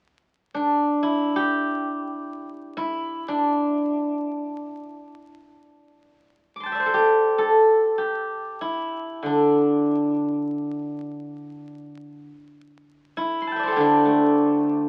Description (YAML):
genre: chinese traditional, Chinese solo plucked strings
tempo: free time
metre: none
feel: none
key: D shang mode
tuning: A4 = 440 Hz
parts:
  - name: steel-string zither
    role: solo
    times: 0.5-14.9 s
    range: D3 to D6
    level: -23 LUFS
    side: equal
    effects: none
room: moderate studio ambience, RT60 0.5 s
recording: very old 78 rpm record, vinyl crackle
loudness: -23 LUFS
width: mono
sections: 0.0-14.9 A section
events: none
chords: none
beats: free time